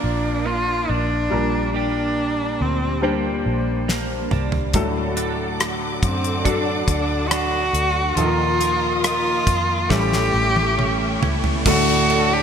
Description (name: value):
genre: pop ballad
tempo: 70 BPM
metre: 4/4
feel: straight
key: G minor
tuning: A4 = 443 Hz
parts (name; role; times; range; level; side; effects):
- rich cello; melody; 0.0-12.4 s; Bb3 to G4; -22 LUFS; equal; none
- warm concert grand piano; accompaniment; 0.0-12.4 s; A2 to C5; -25 LUFS; left 2 dB; ensemble chorus
- direct-recorded clean electric guitar; arpeggios; 0.0-12.4 s; Bb2 to Bb4; -28 LUFS; right 6 dB; analog chorus
- vintage muted fingered electric bass; bass; 0.0-12.4 s; A1 to F#2; -26 LUFS; equal; none
- downlifter and riser; sound effects; 0.0-12.4 s; none; -31 LUFS; left 1 dB; none
- damped 70s drum kit; drums; 3.9-12.3 s; crash cymbal, hi-hat, kick drum, ride cymbal, rim click, snare drum, toms; -24 LUFS; equal; gated reverb
- warm studio string section; sustained chords; 4.7-12.4 s; A4 to Eb6; -29 LUFS; left 1 dB; none
- clear French horn section; second line; 11.7-12.4 s; A2 to D4; -27 LUFS; right 3 dB; none
- tambourine; percussion; 11.7-12.1 s; none; barely audible; none; none
room: moderate lush hall reverb, RT60 3.0 s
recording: bright 1980s-style digital production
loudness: -18 LUFS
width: side -7 dB against mid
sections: 0.0-11.7 A section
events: drum fill 3.9-4.7, 9.9-11.7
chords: 0.0 Bb; 1.3 Gm/Bb; 4.7 D; 8.2 Ebsus2; 9.9 A7; 11.7 D